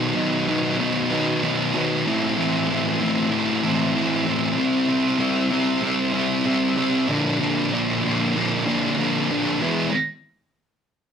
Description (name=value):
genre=rock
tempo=95 BPM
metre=4/4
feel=straight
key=unclear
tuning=A4 = 439 Hz
part: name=thick fuzz guitar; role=solo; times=0.0-9.9 s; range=A2 to E4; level=-19 LUFS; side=equal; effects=distortion
room=moderate studio reverb, RT60 0.6 s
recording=rough rehearsal-room recording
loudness=-19 LUFS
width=side -7 dB against mid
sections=0.0-9.6 A section; 9.6-11.1 B section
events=none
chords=0.0 B; 2.1 Am; 4.6 C; 7.1 A#; 9.6 E